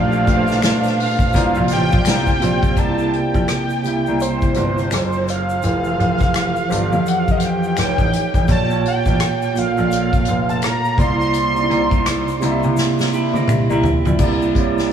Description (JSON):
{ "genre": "R&B, neo-soul", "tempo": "84 BPM", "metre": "4/4", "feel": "swing 61% on 16ths", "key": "unclear", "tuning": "A4 = 445 Hz", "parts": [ { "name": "fat analog lead", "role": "melody", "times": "0.0-12.6 s", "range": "C5 to C6", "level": "-22 LUFS", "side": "equal", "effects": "tape echo" }, { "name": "barky tine electric piano", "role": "accompaniment", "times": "0.0-14.9 s", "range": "Bb2 to E5", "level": "-20 LUFS", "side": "right 4 dB", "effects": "overdrive, fast tremolo" }, { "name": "warm symphonic string section", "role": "sustained chords", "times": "0.0-2.8 s", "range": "Bb2 to F4", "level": "-29 LUFS", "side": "left 2 dB", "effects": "none" }, { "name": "warm horn section", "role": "stabs", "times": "0.0-2.4 s", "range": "F3 to F4", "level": "-31 LUFS", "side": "left 2 dB", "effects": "none" }, { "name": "clear concert grand piano", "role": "bass", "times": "0.0-14.9 s", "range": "F1 to C3", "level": "-21 LUFS", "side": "left 2 dB", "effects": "none" }, { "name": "egg shaker and finger snaps", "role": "percussion", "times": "0.1-14.9 s", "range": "none", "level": "-37 LUFS", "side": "left 5 dB", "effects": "none" }, { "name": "unplugged drum kit", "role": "drums", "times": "0.3-14.8 s", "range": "crash cymbal, hi-hat, kick drum, rim click, snare drum, toms", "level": "-20 LUFS", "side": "equal", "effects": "none" }, { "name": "semi-hollow electric guitar", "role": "second line", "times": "13.1-14.2 s", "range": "C4 to G4", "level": "-25 LUFS", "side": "right 2 dB", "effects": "none" } ], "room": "moderate huge ambient reverb, RT60 4.3 s", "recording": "dreamy mix soaked in reverb", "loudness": "-15 LUFS", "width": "side -8 dB against mid", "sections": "0.0-2.8 A section; 2.8-14.2 B section", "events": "drum fill 12.8-14.2", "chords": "0.0 Bbmaj9; 1.3 C7sus4; 2.8 C9; 4.9 Gbmaj9; 5.6 Fmaj9; 7.8 F7b13; 8.5 Bbm; 11.0 C9" }